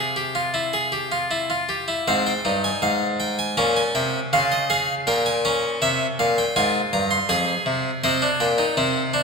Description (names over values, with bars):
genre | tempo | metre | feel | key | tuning
classical, baroque-style 3-part fugue for harpsichord | 80 BPM | 4/4 | straight | F minor | A4 = 441 Hz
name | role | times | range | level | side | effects
harpsichord | solo | 0.0-9.2 s | F2 to C6 | -19 LUFS | equal | none
room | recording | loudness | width
wet concert hall reverb, RT60 2.1 s | minimal, uncompressed stereo recording | -19 LUFS | side -4 dB against mid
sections
0.0-2.1 A section; 2.1-9.2 B section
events
none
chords
0.0 C; 2.1 Fm; 3.6 Gm7b5/Bb; 5.1 Edim7/Bb; 6.6 Fm; 8.0 Cm